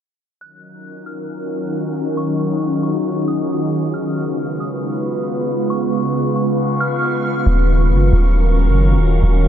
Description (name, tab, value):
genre	hip hop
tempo	136 BPM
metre	4/4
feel	half-time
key	Eb minor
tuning	A4 = 440 Hz
part	soft synth bell	melody	0.4-7.4 s	Db6 to Gb6	-29 LUFS	equal	chorus, phaser, analog delay
part	glassy FM pad	sustained chords	0.9-9.5 s	Db3 to F5	-19 LUFS	equal	ensemble chorus, built-in reverb
part	wind-like tuned noise texture	texture	1.1-9.5 s	F4 to Db6	-30 LUFS	left 2 dB	built-in reverb, lush chorus
part	long sustained 808-style bass	bass	7.5-9.5 s	Eb1 to Gb1	-13 LUFS	equal	none
room	wet huge ambient reverb, RT60 7.9 s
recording	dreamy mix soaked in reverb, low-pass filter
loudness	-16 LUFS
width	side -10 dB against mid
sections	0.4-7.5 A section; 7.5-9.5 B section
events	filter sweep 0.4-7.5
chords	0.4 Ebm9; 3.9 Db7; 7.5 Ebm9